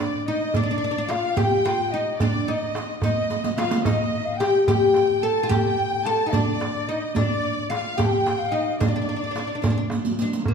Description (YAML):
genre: Arabic maqam ensemble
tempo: 73 BPM (dotted quarters)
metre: 6/8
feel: straight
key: D maqam kurd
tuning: A4 = 441 Hz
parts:
  - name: oud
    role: melody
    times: 0.0-10.5 s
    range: Bb3 to A4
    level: -24 LUFS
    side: left 1 dB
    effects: none
  - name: breathy ney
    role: second line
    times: 0.0-9.9 s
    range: D5 to A5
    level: -30 LUFS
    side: left 4 dB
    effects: none
  - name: warm symphonic violin section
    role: second line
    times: 0.0-9.9 s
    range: D5 to A5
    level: -29 LUFS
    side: equal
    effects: none
  - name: darbuka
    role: percussion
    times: 0.0-10.5 s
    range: none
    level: -27 LUFS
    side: right 2 dB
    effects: none
  - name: riq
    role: percussion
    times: 0.5-10.5 s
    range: none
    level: -29 LUFS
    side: right 2 dB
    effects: none
room: wet scoring stage reverb, RT60 1.6 s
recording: dark, warm production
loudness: -20 LUFS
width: side -6 dB against mid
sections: 0.0-10.5 A section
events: drum fill 3.3-3.9, 9.9-10.5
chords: none